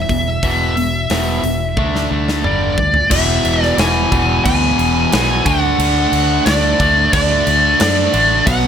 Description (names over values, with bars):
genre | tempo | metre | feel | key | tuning
hard rock | 90 BPM | 4/4 | straight | E mixolydian | A4 = 440 Hz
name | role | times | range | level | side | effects
high-gain lead guitar | melody | 0.0-8.7 s | D5 to G#5 | -16 LUFS | left 1 dB | distortion
sludgy distorted guitar | riff | 0.0-8.7 s | E2 to D4 | -18 LUFS | equal | overdrive
vintage muted fingered electric bass | bass | 0.0-8.7 s | E1 to F#2 | -20 LUFS | equal | none
big rock drum kit | drums | 0.1-8.6 s | crash cymbal, hi-hat, kick drum, snare drum, toms | -20 LUFS | right 1 dB | none
room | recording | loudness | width
little or no reverb | none | -12 LUFS | side -8 dB against mid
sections
0.0-3.1 A section; 3.1-8.7 B section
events
drum fill 1.8-3.1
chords
0.0 E5; 1.8 D5; 2.4 G5; 3.1 E; 5.5 D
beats
| 0.43 1.10 1.77 2.44 | 3.11 3.78 4.45 5.12 | 5.79 6.46 7.13 7.80 | 8.47